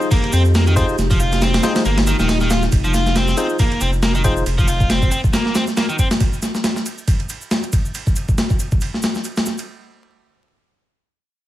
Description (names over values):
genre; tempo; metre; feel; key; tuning
breakbeat, breaks; 138 BPM; 4/4; swing 56% on 16ths; F minor; A4 = 440 Hz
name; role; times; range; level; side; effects
deep dark ambient pad; sustained chords; 0.0-2.7 s; Eb4 to G4; -28 LUFS; equal; chorus, built-in reverb, sidechain pumping
barky tine electric piano; stabs; 0.0-4.4 s; Eb4 to C5; -24 LUFS; left 2 dB; low-pass filter, digital delay
shaker; drums; 0.0-9.7 s; none; -33 LUFS; right 1 dB; none
biting overdriven guitar; riff; 0.1-6.1 s; Eb3 to F4; -22 LUFS; equal; low-pass filter, digital delay
breakbeat sampler-style drum kit; drums; 0.1-9.7 s; kick drum, ride cymbal, snare drum; -18 LUFS; equal; overdrive
saturated sub bass; bass; 0.3-5.1 s; Eb1 to F2; -18 LUFS; equal; tube saturation
room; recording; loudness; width
digital ambience; vinyl crackle; -15 LUFS; side -14 dB against mid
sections
0.0-2.7 A section; 2.7-9.7 B section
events
filter sweep on tine electric piano 2.7-4.5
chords
0.0 Fm7; 2.7 F5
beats
0.11 0.55 | 0.98 1.42 1.85 2.29 | 2.72 3.16 3.59 4.03 | 4.46 4.90 5.33 5.77 | 6.20 6.63 7.07 7.50 | 7.94 8.37 8.81 9.24